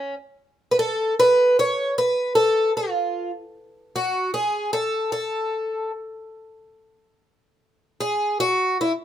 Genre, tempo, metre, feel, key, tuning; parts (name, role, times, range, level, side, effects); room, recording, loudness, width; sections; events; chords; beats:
fado; 75 BPM; 4/4; rubato; A4 = 441 Hz
picked twelve-string acoustic guitar; solo; 0.0-8.9 s; C#4 to C#5; -20 LUFS; equal
light reverb; minimal, uncompressed stereo recording; -20 LUFS; side -11 dB against mid
0.0-6.8 A section; 6.8-9.0 B section
| 0.35 1.14 1.93 2.72 | 3.52 4.31 5.11 5.94 | 6.77 7.59 8.39